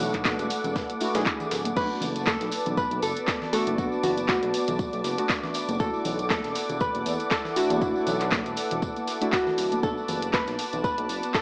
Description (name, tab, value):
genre	deep house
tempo	119 BPM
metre	4/4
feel	swing 56% on 16ths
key	B minor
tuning	A4 = 439 Hz
part	warm analog pad	sustained chords	0.0-11.4 s	A3 to D6	-36 LUFS	equal	chorus, sidechain pumping
part	deep mellow chord stab	stabs	0.0-11.4 s	A3 to G#4	-35 LUFS	equal	chorus, cassette tape, sidechain pumping
part	smooth synth bass	bass	0.0-11.2 s	D1 to E2	-35 LUFS	equal	sidechain pumping
part	breakbeat sampler-style drum kit	drums	0.0-11.4 s	hi-hat, snare drum	-42 LUFS	equal	none
part	deep house drum kit	drums	0.0-11.4 s	crash cymbal, handclaps, hi-hat	-33 LUFS	equal	none
part	tambourine	percussion	0.0-11.4 s	none	-44 LUFS	equal	none
part	soft string machine	texture	0.0-11.4 s	D5 to F#6	-43 LUFS	equal	phaser, ensemble chorus
part	warbly tape-like pad	texture	0.0-11.4 s	B3 to A5	-38 LUFS	equal	chorus, built-in reverb, sidechain pumping
part	electronic kick drum	drums	0.1-11.4 s	none	-34 LUFS	equal	none
part	congas	percussion	0.2-11.1 s	none	-40 LUFS	equal	none
part	hollow-body jazz guitar	melody	1.8-11.4 s	F#4 to B4	-32 LUFS	equal	tape echo
room	light reverb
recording	dry, gritty hardware recording, small speaker sound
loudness	-27 LUFS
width	mono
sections	0.0-11.4 A section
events	none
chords	0.0 E9sus4; 1.8 Bm7; 5.8 E9sus4; 9.8 Bm7